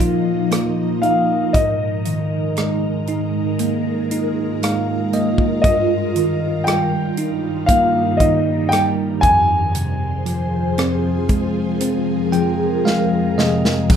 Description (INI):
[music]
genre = pop ballad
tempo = 58 BPM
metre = 4/4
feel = straight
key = unclear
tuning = A4 = 440 Hz
[part]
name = dark grand piano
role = melody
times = 0.0-10.7 s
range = Eb5 to Ab5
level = -20 LUFS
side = left 2 dB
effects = plate reverb, digital delay
[part]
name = bell-like tine electric piano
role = accompaniment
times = 0.0-14.0 s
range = F2 to G5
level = -20 LUFS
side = right 2 dB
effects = fast stereo tremolo, plate reverb
[part]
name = ethereal airy pad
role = sustained chords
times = 0.0-14.0 s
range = F2 to C5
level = -22 LUFS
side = equal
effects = ensemble chorus, built-in reverb, phaser, plate reverb
[part]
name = modern studio drum kit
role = drums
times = 0.0-14.0 s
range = crash cymbal, hi-hat, kick drum, rim click, snare drum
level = -20 LUFS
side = equal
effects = none
[sound]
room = wet studio reverb, RT60 0.6 s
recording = rough home demo mix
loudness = -16 LUFS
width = side -8 dB against mid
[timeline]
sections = 0.0-13.9 A section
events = tine electric piano fill 4.1-5.6, 11.8-13.9; drum fill 12.9-13.9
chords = 0.0 Bbsus4; 1.5 Absus2; 5.6 Ebadd9/G; 9.2 Fm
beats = 0.52 | 1.54 2.57 3.59 4.62 | 5.64 6.66 7.69 8.71 | 9.74 10.77 11.81 12.85 | 13.90